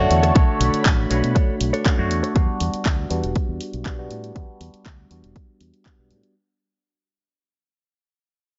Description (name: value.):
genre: filtered disco house.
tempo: 120 BPM.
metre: 4/4.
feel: straight.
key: unclear.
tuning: A4 = 440 Hz.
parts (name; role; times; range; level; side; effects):
barky tine electric piano; accompaniment; 0.0-6.3 s; G3 to C#5; -26 LUFS; equal; phaser, vintage 12-bit sampler grit, sidechain pumping, low-pass filter.
string machine, full ensemble; sustained chords; 0.0-2.3 s; D3 to B5; -34 LUFS; equal; ensemble chorus, sidechain pumping, low-pass filter.
fingered electric bass with an envelope filter; bass; 0.0-6.2 s; E1 to B2; -26 LUFS; equal; sidechain pumping, low-pass filter.
punchy analog drum machine; drums; 0.1-6.3 s; handclaps, hi-hat; -30 LUFS; equal; none.
direct-recorded clean electric guitar; riff; 0.2-2.3 s; D4 to C#5; -31 LUFS; equal; sidechain pumping, low-pass filter.
electronic kick drum; drums; 0.4-6.0 s; none; -21 LUFS; equal; overdrive.
room: light reverb, digital ambience.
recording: nothing above 7.6 kHz.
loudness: -20 LUFS.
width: mono.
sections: 0.0-6.4 A section.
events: fade-out 0.0-6.4; filter sweep 0.0-6.4.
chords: 0.0 Bm9; 2.4 Em9.